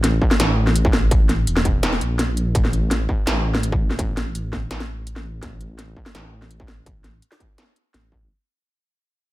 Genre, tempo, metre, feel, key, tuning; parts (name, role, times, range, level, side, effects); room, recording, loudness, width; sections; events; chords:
half-time drum and bass; 167 BPM; 4/4; half-time; A4 = 440 Hz
dark detuned saw bass; bass; 0.0-8.3 s; E1 to Bb1; -22 LUFS; equal
industrial drum kit; drums; 0.0-8.0 s; hi-hat, snare drum; -23 LUFS; equal
electronic kick drum; drums; 0.2-8.2 s; -21 LUFS; equal; distortion
little or no reverb; -18 LUFS; side -17 dB against mid
0.0-8.3 A section
fade-out 0.0-8.3